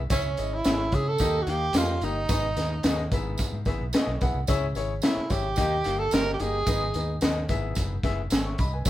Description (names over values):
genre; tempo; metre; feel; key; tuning
uptempo 1960s-style soul; 110 BPM; 4/4; straight; unclear; A4 = 440 Hz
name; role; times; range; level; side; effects
vintage muted fingered electric bass; bass; 0.0-8.9 s; F#1 to C#3; -30 LUFS; equal; none
breathy tenor saxophone; melody; 0.1-8.9 s; C#4 to A#4; -28 LUFS; right 2 dB; none
warm grand piano; accompaniment; 0.1-8.9 s; G#2 to E6; -31 LUFS; left 4 dB; none
crunchy breakbeat drum kit; drums; 0.1-8.9 s; hi-hat, kick drum, snare drum; -27 LUFS; equal; none
tambourine; percussion; 0.1-8.9 s; none; -38 LUFS; right 4 dB; none
room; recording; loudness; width
light reverb; band playing live in one room; -23 LUFS; side -14 dB against mid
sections
0.0-8.9 A section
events
none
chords
0.1 C#m; 1.2 D#; 2.3 G#m; 3.1 E/G#; 4.5 C#m; 5.6 D#; 6.7 G#m; 7.5 E